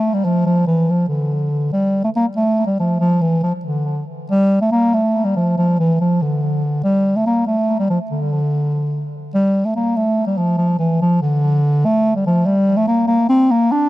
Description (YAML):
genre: medieval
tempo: 95 BPM (dotted quarters)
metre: 6/8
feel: straight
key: D minor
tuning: A4 = 440 Hz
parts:
  - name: dark bass clarinet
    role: solo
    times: 0.0-13.9 s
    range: D3 to D4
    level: -15 LUFS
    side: equal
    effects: tape echo
room: light reverb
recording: dry, close 1970s-style studio recording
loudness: -15 LUFS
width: side -17 dB against mid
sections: 0.0-9.3 A section; 9.3-13.9 A section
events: speeding up 0.0-13.9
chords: none